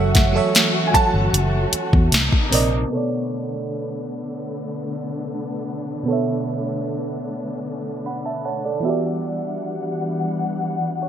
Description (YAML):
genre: contemporary R&B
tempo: 76 BPM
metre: 4/4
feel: straight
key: B minor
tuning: A4 = 440 Hz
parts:
  - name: warm concert grand piano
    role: melody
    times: 0.0-2.5 s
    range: F#5 to A5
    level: -24 LUFS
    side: right 2 dB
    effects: ensemble chorus, ping-pong delay
  - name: FM electric piano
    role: accompaniment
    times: 0.0-11.1 s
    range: B2 to B5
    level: -24 LUFS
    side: right 3 dB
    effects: chorus
  - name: warm studio string section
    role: sustained chords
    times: 0.0-11.1 s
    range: C3 to F#5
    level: -27 LUFS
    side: left 3 dB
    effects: none
  - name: vintage muted fingered electric bass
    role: bass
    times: 0.0-2.8 s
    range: F#1 to E2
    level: -20 LUFS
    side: equal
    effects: none
  - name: smooth R&B drum kit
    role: drums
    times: 0.1-2.7 s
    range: hi-hat, kick drum, snare drum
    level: -17 LUFS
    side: equal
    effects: gated reverb
room: moderate lush hall reverb, RT60 2.7 s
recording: bright 1980s-style digital production, low-pass filter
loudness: -19 LUFS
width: side -9 dB against mid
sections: 0.0-2.9 A section; 2.9-11.1 B section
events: filter sweep 2.9-11.1; FM electric piano fill 8.1-9.2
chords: 0.0 F#m7; 2.1 Cm9; 2.9 Bm9; 8.8 Em9